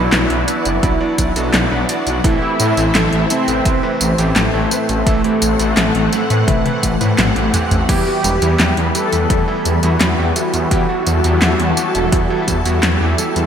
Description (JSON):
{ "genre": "synthwave", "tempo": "85 BPM", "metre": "4/4", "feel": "straight", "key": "E minor", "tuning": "A4 = 438 Hz", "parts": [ { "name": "mellow synth brass", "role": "melody", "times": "0.0-13.4 s", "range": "A3 to A4", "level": "-20 LUFS", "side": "equal", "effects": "chorus, ping-pong delay" }, { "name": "analog string pad", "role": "sustained chords", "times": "0.0-13.5 s", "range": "E3 to F#5", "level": "-22 LUFS", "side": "equal", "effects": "ensemble chorus, sidechain pumping" }, { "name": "clear electric grand piano", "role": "stabs", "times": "0.0-13.5 s", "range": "E3 to D5", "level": "-23 LUFS", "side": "right 2 dB", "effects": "none" }, { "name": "wide detuned saw bass", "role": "bass", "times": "0.0-13.5 s", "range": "E1 to A2", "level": "-18 LUFS", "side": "equal", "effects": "chorus, sidechain pumping" }, { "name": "pop drum kit", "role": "drums", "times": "0.1-13.5 s", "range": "crash cymbal, handclaps, hi-hat, snare drum, tambourine, toms", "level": "-19 LUFS", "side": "equal", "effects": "overdrive, gated reverb" }, { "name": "electronic kick drum", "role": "drums", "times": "0.8-12.6 s", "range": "none", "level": "-18 LUFS", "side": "equal", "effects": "overdrive" } ], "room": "moderate lush hall reverb, RT60 2.8 s", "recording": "bright 1980s-style digital production", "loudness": "-13 LUFS", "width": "side -8 dB against mid", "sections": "0.0-13.5 A section", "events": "drum fill 6.5-7.9; kick drops out 7.2-7.9", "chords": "0.0 Bm; 2.2 Am; 7.9 Em" }